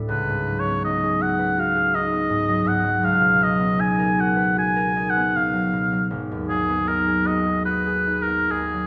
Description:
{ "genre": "classical, impressionist duo for oboe and harp", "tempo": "64-84 BPM", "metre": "4/4", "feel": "rubato", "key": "unclear", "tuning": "A4 = 441 Hz", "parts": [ { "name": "concert harp", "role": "accompaniment", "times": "0.0-8.9 s", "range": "Ab1 to Cb5", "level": "-25 LUFS", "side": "equal", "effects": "none" }, { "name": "warm oboe", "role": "melody", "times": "0.1-8.9 s", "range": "Ab4 to Ab5", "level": "-24 LUFS", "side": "equal", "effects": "none" } ], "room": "wet recital hall reverb, RT60 1.3 s", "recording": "recorded in a church or concert hall", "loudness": "-21 LUFS", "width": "mono", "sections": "0.0-8.9 A section", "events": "none", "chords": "0.1 Db9sus4; 3.0 Bmaj7#11/Db; 6.1 Abm7" }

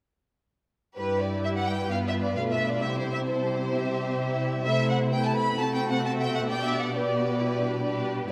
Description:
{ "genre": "quick classical-period movement for string orchestra", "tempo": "131 BPM", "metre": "4/4", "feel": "rubato", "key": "G major", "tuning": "A4 = 437 Hz", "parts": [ { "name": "rich studio violin section", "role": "melody", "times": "1.0-8.3 s", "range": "B4 to B5", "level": "-32 LUFS", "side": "equal", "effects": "none" }, { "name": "rich studio violin section", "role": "second line", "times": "1.0-8.3 s", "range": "B3 to E5", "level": "-35 LUFS", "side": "equal", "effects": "none" }, { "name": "rich studio viola section", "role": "accompaniment", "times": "1.0-8.3 s", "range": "G3 to G4", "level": "-34 LUFS", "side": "equal", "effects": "none" }, { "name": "warm studio cello section", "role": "bass", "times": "1.0-8.3 s", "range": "G2 to C3", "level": "-32 LUFS", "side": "equal", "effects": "none" } ], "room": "wet scoring stage reverb, RT60 1.8 s", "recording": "none", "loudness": "-27 LUFS", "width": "mono", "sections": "1.0-8.3 A section", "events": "none", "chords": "1.0 G; 1.9 G7; 2.8 C; 4.7 Am/C; 5.6 Am6/C; 6.5 G/B" }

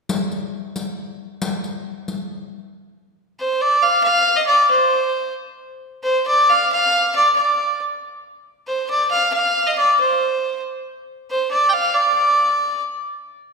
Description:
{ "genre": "medieval dance", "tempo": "91 BPM (dotted quarters)", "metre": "6/8", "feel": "straight", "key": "D phrygian", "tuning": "A4 = 440 Hz", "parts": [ { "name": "riq", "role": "percussion", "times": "0.1-2.3 s", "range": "none", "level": "-26 LUFS", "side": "left 3 dB", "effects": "none" }, { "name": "rich fiddle", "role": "melody", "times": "3.4-12.8 s", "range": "C5 to G5", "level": "-16 LUFS", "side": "equal", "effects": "none" } ], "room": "wet scoring stage reverb, RT60 1.7 s", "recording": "recorded in a church or concert hall", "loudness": "-16 LUFS", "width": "side -4 dB against mid", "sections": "0.1-2.7 A section; 2.7-13.3 B section", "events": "none", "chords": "none" }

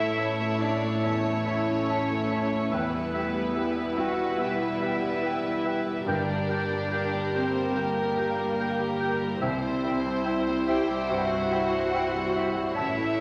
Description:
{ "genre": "cinematic, emotional film score for orchestra", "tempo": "72 BPM", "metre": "4/4", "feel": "rubato", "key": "C lydian", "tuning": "A4 = 440 Hz", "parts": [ { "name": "clear studio violin section", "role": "melody", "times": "0.0-13.2 s", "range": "Bb4 to C#5", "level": "-40 LUFS", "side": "equal", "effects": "none" }, { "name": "warm studio violin section", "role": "second line", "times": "0.0-13.2 s", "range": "Bb4 to G5", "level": "-38 LUFS", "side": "equal", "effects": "none" }, { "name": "rich studio viola section", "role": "accompaniment", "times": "0.0-13.2 s", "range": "G3 to G4", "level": "-34 LUFS", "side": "equal", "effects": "none" }, { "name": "warm concert grand piano", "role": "accompaniment", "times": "0.0-13.2 s", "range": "A1 to G4", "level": "-36 LUFS", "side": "equal", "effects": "none" }, { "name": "mellow French horn section", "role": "sustained chords", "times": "0.0-13.2 s", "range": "G3 to G4", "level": "-37 LUFS", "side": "equal", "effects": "none" }, { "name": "dark studio cello section", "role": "bass", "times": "0.0-13.2 s", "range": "Bb3 to G4", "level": "-34 LUFS", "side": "equal", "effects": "none" }, { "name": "dark studio double bass section", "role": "bass", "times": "0.0-13.2 s", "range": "E1 to C2", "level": "-41 LUFS", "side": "equal", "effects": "none" }, { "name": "dark clarinet", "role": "second line", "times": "0.2-13.2 s", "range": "Bb4 to C#5", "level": "-41 LUFS", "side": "equal", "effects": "none" }, { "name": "mellow large flute ensemble", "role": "second line", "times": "0.2-13.2 s", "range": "G5 to A5", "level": "-40 LUFS", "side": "equal", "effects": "none" }, { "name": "warm oboe", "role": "second line", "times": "0.2-12.9 s", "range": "E5 to G5", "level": "-38 LUFS", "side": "equal", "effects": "none" }, { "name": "timpani", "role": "percussion", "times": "6.1-7.3 s", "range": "G2", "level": "-39 LUFS", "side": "equal", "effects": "none" } ], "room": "wet scoring stage reverb, RT60 1.9 s", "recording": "none", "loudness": "-27 LUFS", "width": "mono", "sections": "0.0-13.2 A section", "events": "none", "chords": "0.0 A; 2.7 Em; 6.1 Gm; 9.4 C" }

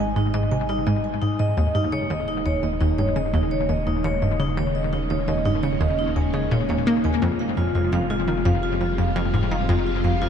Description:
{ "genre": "ambient, sequencer-driven space music", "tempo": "85 BPM", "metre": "4/4", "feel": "straight", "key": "unclear", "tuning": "A4 = 440 Hz", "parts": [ { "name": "phased string machine", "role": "sustained chords", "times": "0.0-10.3 s", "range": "C3 to F4", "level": "-29 LUFS", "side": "equal", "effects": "ensemble chorus, phaser" }, { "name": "vibraphone with medium mallets", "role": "arpeggios", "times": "0.0-10.3 s", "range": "Eb4 to Ab5", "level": "-26 LUFS", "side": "moving between left 4 dB and right 4 dB", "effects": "auto-pan, ping-pong delay" }, { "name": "analog pluck", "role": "riff", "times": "0.0-10.3 s", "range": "Eb2 to Bb3", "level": "-22 LUFS", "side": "equal", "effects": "chorus, ping-pong delay" }, { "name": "round analog bass", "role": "bass", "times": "0.0-10.3 s", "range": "Eb1 to Ab1", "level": "-31 LUFS", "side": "equal", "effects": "none" } ], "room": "wet huge ambient reverb, RT60 8.7 s", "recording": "dark, warm production", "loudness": "-20 LUFS", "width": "side -8 dB against mid", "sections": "0.0-10.3 A section", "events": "fade-in on string machine 0.0-10.3", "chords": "0.0 Ab; 1.6 Eb7sus4; 7.2 Fmadd9" }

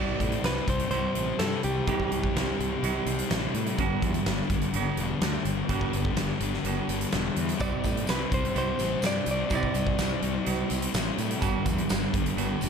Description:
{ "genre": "rock, shoegaze and dream pop", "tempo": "126 BPM", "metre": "4/4", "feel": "straight", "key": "unclear", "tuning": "A4 = 441 Hz", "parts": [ { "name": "direct-recorded clean electric guitar", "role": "melody", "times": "0.0-3.3, 7.6-10.9 s", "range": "G4 to D5", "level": "-32 LUFS", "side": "equal", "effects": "analog delay" }, { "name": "overdriven semi-hollow guitar", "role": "riff", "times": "0.0-12.7 s", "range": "G2 to G4", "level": "-32 LUFS", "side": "right 11 dB", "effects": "reverse reverb" }, { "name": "thick fuzz guitar", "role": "riff", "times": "0.0-12.7 s", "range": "G2 to C4", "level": "-31 LUFS", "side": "left 10 dB", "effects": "distortion, wide subtle chorus" }, { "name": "fuzz fingered electric bass", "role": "bass", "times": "0.0-12.7 s", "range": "E1 to A2", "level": "-32 LUFS", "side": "equal", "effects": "overdrive" }, { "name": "huge arena drum kit", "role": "drums", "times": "0.2-12.7 s", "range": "hi-hat, kick drum, snare drum", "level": "-31 LUFS", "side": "right 1 dB", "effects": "none" }, { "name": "tambourine", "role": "percussion", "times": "7.6-12.7 s", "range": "none", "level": "-45 LUFS", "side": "right 7 dB", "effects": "none" } ], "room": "light reverb, studio reverb", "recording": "none", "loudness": "-25 LUFS", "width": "side -6 dB against mid", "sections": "0.0-12.7 A section", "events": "none", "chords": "0.0 C6; 3.8 G; 7.6 C69; 11.4 G" }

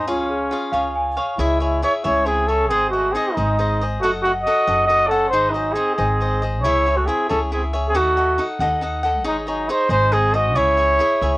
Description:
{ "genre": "mexican folk, mariachi", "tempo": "92 BPM (dotted quarters)", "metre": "6/8", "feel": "straight", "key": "C# harmonic minor", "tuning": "A4 = 440 Hz", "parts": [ { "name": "mellow trumpet", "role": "melody", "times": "0.0-11.4 s", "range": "Db4 to D#5", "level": "-18 LUFS", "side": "equal", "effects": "cassette tape" }, { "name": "cavaquinho", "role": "accompaniment", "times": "0.0-11.4 s", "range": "D#4 to F#5", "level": "-24 LUFS", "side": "left 1 dB", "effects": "cassette tape" }, { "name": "large celesta", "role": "arpeggios", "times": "0.0-1.4 s", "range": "F4 to Db6", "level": "-25 LUFS", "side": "right 2 dB", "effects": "cassette tape" }, { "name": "upright bass", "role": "bass", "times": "0.0-11.4 s", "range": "F#1 to D#2", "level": "-24 LUFS", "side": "equal", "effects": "none" }, { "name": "mellow trumpet", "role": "second line", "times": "1.4-11.4 s", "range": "F#3 to F#4", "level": "-30 LUFS", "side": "right 2 dB", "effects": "cassette tape" } ], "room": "light reverb", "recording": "home recording on cassette", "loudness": "-17 LUFS", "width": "side -19 dB against mid", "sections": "0.0-1.4 A section; 1.4-11.4 B section", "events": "none", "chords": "0.1 Db; 1.4 C#m; 2.7 G#; 4.0 D#dim/F#; 5.3 G#; 6.6 C#m; 8.0 D#dim; 9.3 G#sus4; 9.9 G#; 10.6 C#m" }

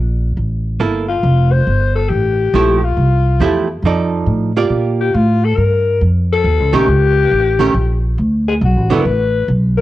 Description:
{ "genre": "jazz", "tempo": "138 BPM", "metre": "4/4", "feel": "swing 66% on 8ths", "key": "F major", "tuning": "A4 = 439 Hz", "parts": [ { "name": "upright bass", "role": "bass", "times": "0.0-9.8 s", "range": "F1 to Bb2", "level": "-14 LUFS", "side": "equal", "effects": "none" }, { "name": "archtop guitar, miked and amplified", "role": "accompaniment", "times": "0.8-9.0 s", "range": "D3 to D5", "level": "-16 LUFS", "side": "right 5 dB", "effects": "cassette tape, plate reverb" }, { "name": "growling alto saxophone", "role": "melody", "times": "1.1-9.8 s", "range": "F4 to C5", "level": "-16 LUFS", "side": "left 5 dB", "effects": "cassette tape, plate reverb" } ], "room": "moderate studio reverb, RT60 0.5 s", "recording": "home recording on cassette", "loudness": "-12 LUFS", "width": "side -15 dB against mid", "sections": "0.0-4.7 A section; 4.7-9.8 B section", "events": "none", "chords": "0.0 C13 (rootless); 1.2 Fmaj9; 3.8 F13; 4.7 Bb6; 6.4 Eb7#11; 8.2 D6" }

